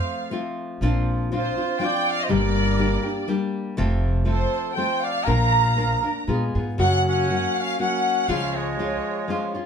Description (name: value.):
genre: mexican folk, mariachi.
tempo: 121 BPM.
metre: 3/4.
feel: swing 54% on 8ths, rubato.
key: Bb major.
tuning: A4 = 440 Hz.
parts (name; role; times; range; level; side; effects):
warm studio violin section; melody; 0.0-9.6 s; C5 to Bb5; -25 LUFS; equal; none.
warm trumpet; second line; 0.0-9.6 s; Ab3 to F5; -29 LUFS; right 7 dB; none.
nylon-string guitar; accompaniment; 0.0-9.7 s; F2 to Bb4; -25 LUFS; left 2 dB; none.
upright bass; bass; 0.8-8.9 s; F1 to Bb2; -24 LUFS; equal; none.
room: wet studio reverb, RT60 0.5 s.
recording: heard from further back in the room.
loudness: -20 LUFS.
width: side -7 dB against mid.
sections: 0.0-6.8 A section; 6.8-9.7 B section.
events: none.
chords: 0.0 F; 0.8 Bbadd9; 2.3 Gm; 3.8 F; 5.3 Bb; 6.3 Abm69; 6.8 Gb; 8.3 Db.